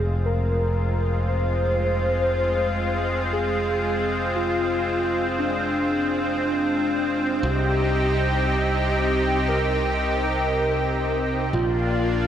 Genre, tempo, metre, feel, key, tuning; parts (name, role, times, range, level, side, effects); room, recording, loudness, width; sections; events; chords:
synthwave; 117 BPM; 4/4; straight; F dorian; A4 = 439 Hz
warm velvety synth lead; melody; 0.0-12.3 s; D4 to C5; -25 LUFS; equal; chorus, vintage 12-bit sampler grit, shimmer reverb, tape echo
lush unison pad; sustained chords; 0.0-12.3 s; C3 to G4; -24 LUFS; equal; chorus, shimmer reverb
modern bright picked electric bass; bass; 0.0-12.3 s; F1 to C2; -26 LUFS; equal
moderate lush hall reverb, RT60 2.8 s; -20 LUFS; side -10 dB against mid
0.0-12.3 A section
0.0 Fm; 7.4 Cm; 11.5 Bb